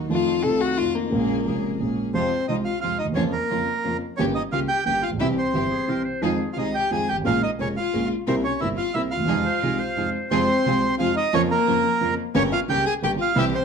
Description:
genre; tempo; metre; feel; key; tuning
tango; 177 BPM; 3/4; rubato; F minor; A4 = 440 Hz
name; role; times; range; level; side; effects
dark concert grand piano; accompaniment; 0.0-13.5 s; F1 to G4; -25 LUFS; right 2 dB; none
warm chamber string section; stabs; 0.0-13.5 s; F3 to Bb4; -30 LUFS; equal; none
warm violin; second line; 0.1-13.6 s; Bb3 to A4; -27 LUFS; left 7 dB; none
bandoneon; melody; 2.1-13.6 s; Bb4 to Ab5; -25 LUFS; right 4 dB; none
bright clarinet; second line; 5.7-6.5, 9.5-10.3 s; Ab4 to C5; -31 LUFS; right 2 dB; none
room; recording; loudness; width
wet club reverb, RT60 0.9 s; dark, warm production; -20 LUFS; side -6 dB against mid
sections
0.0-2.1 A section; 2.1-10.3 B section; 10.3-13.6 C section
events
violin solo 0.0-2.1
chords
0.1 F7; 1.1 Bbm7; 2.1 Fm; 3.2 Bbm/F; 4.2 Gdim; 5.2 C; 6.2 Fm7; 7.3 Bbm7; 8.3 C7; 9.3 Fm7; 10.3 Fm; 11.3 Bbm/F; 12.4 Gdim

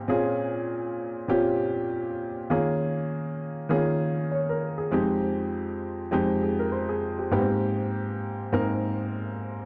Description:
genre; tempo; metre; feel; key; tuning
soul; 99 BPM; 4/4; swing 54% on 16ths; Bb dorian; A4 = 443 Hz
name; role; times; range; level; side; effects
warm baby grand piano; solo; 0.0-9.7 s; F2 to Db5; -27 LUFS; equal; none
room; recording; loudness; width
moderate plate reverb, RT60 2.4 s; dark, warm production; -27 LUFS; mono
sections
0.0-9.7 A section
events
none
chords
0.1 Bbm9; 2.5 Eb9sus4; 4.9 Fm9; 7.3 Abmaj9

